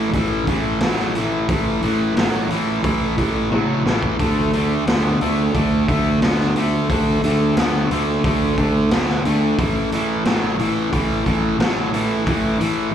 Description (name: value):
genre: blues rock power trio and southern rock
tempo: 89 BPM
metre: 4/4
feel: straight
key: unclear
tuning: A4 = 440 Hz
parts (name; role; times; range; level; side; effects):
- sludgy distorted guitar; riff; 0.0-12.9 s; A2 to B3; -19 LUFS; equal; overdrive
- fuzz fingered electric bass; bass; 0.0-12.9 s; A1 to D2; -22 LUFS; equal; overdrive
- raw garage drum kit; drums; 0.1-12.8 s; hi-hat, kick drum, snare drum, toms; -23 LUFS; equal; none
room: light reverb, small room ambience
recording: live gig heard through the venue's PA, club ambience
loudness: -16 LUFS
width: side -9 dB against mid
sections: 0.0-12.9 A section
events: drum fill 3.5-4.2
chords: 0.0 A5; 4.2 D5; 9.6 A5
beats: 0.14 0.82 | 1.49 2.17 2.85 3.52 | 4.20 4.87 5.55 6.22 | 6.90 7.57 8.24 8.91 | 9.59 10.26 10.93 11.60 | 12.27